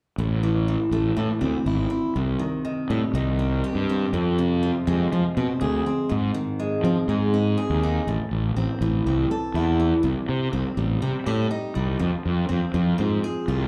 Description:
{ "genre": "rock", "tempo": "122 BPM", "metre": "4/4", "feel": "straight", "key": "A harmonic minor", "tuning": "A4 = 440 Hz", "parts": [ { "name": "picked steel-string acoustic guitar", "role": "arpeggios", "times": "0.2-13.7 s", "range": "F2 to A4", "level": "-28 LUFS", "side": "equal", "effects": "plate reverb, slapback echo" }, { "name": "fuzz fingered electric bass", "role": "bass", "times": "0.2-13.7 s", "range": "G#1 to F3", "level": "-26 LUFS", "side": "equal", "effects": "overdrive" } ], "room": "light reverb", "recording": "live gig heard through the venue's PA, club reverb", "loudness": "-24 LUFS", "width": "mono", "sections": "0.2-8.1 A section; 8.1-13.7 B section", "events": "none", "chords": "0.2 Am; 2.2 Cm; 4.1 Fm; 6.1 G#; 8.1 Am; 10.0 Cm; 12.0 Fm" }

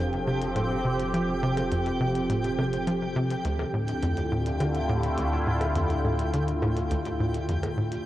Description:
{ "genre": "ambient, sequencer-driven space music", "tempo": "104 BPM", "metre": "4/4", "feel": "straight", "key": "unclear", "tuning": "A4 = 442 Hz", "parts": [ { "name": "sweeping resonant pad", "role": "sustained chords", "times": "0.0-8.1 s", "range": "D3 to B4", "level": "-29 LUFS", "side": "equal", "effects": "chorus" }, { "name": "tight sequencer bass", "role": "riff", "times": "0.0-8.0 s", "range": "D2 to F3", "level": "-28 LUFS", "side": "equal", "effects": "ping-pong delay" }, { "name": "warm sub bass", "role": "bass", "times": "0.0-8.0 s", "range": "F1 to D2", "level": "-34 LUFS", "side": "equal", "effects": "none" }, { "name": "twinkling granular texture", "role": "texture", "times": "0.0-8.1 s", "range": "G4 to G5", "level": "-35 LUFS", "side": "equal", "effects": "built-in reverb" }, { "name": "electronic hi-hat and percussion blips", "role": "percussion", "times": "0.1-8.0 s", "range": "none", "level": "-40 LUFS", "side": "equal", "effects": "ping-pong delay" } ], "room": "wet huge ambient reverb, RT60 7.6 s", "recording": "worn, warbling old tape, cassette tape, warbly pitch drift", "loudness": "-24 LUFS", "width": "side -14 dB against mid", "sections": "0.0-8.1 A section", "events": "none", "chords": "0.0 F6; 3.4 Dm7" }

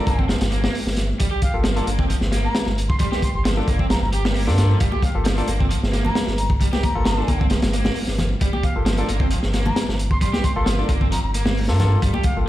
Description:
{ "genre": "breakbeat, breaks", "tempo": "133 BPM", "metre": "4/4", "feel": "straight", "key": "G minor", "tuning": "A4 = 444 Hz", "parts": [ { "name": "reedy silver concert flute", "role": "melody", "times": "0.0-12.4 s", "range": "F5 to C6", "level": "-31 LUFS", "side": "left 1 dB", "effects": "old record sound, vintage 12-bit sampler grit, dub echo" }, { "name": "crunchy overdriven guitar", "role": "riff", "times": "0.0-12.2 s", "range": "F3 to G4", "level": "-28 LUFS", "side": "right 2 dB", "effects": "dub echo" }, { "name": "barky tine electric piano", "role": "stabs", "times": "0.0-12.5 s", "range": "Bb3 to A4", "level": "-30 LUFS", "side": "left 3 dB", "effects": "overdrive, vintage 12-bit sampler grit, dub echo" }, { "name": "saturated sub bass", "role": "bass", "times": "0.1-12.5 s", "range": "G1 to G2", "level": "-22 LUFS", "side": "equal", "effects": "tube saturation" }, { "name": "crunchy breakbeat drum kit", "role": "drums", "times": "0.1-12.4 s", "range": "hi-hat, kick drum, snare drum", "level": "-21 LUFS", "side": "equal", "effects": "none" }, { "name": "congas", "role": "percussion", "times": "4.9-12.2 s", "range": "none", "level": "-30 LUFS", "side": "left 1 dB", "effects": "none" } ], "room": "light reverb", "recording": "played on a big sound system in a bare room, large studio reverb", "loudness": "-18 LUFS", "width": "side -14 dB against mid", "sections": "0.0-12.5 A section", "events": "none", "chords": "0.0 Gm9" }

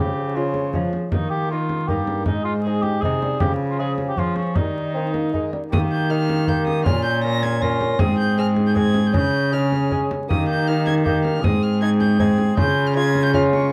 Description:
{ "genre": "classical, renaissance-style consort dance", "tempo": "157 BPM", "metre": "3/4", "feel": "straight", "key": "Eb mixolydian", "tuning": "A4 = 441 Hz", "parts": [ { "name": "rich violin", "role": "melody", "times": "0.0-13.7 s", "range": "Bb4 to Bb6", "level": "-32 LUFS", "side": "equal", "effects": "none" }, { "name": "mellow cor anglais", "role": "second line", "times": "0.0-13.7 s", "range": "Db4 to Ab4", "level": "-31 LUFS", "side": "equal", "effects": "none" }, { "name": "lute", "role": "accompaniment", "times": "0.0-13.7 s", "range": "G2 to Ab4", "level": "-30 LUFS", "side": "equal", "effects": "none" }, { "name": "mellow bassoon", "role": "accompaniment", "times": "0.0-13.7 s", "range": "F3 to Db4", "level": "-30 LUFS", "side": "equal", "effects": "none" }, { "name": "rich cello", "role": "bass", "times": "0.0-13.7 s", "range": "G2 to F3", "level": "-23 LUFS", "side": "equal", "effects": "none" }, { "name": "frame drum", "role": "percussion", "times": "0.5-13.7 s", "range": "none", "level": "-27 LUFS", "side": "equal", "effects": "none" } ], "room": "light reverb", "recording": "dark, warm production, vinyl crackle", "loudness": "-20 LUFS", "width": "mono", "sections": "0.0-5.7 A section; 5.7-13.7 A section", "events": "none", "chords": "0.0 Db; 1.1 Eb; 2.3 Ab; 3.4 Db; 4.6 Eb; 6.9 Bbm; 8.0 Ab; 9.1 Db; 10.3 Eb; 11.4 Ab; 12.6 Db" }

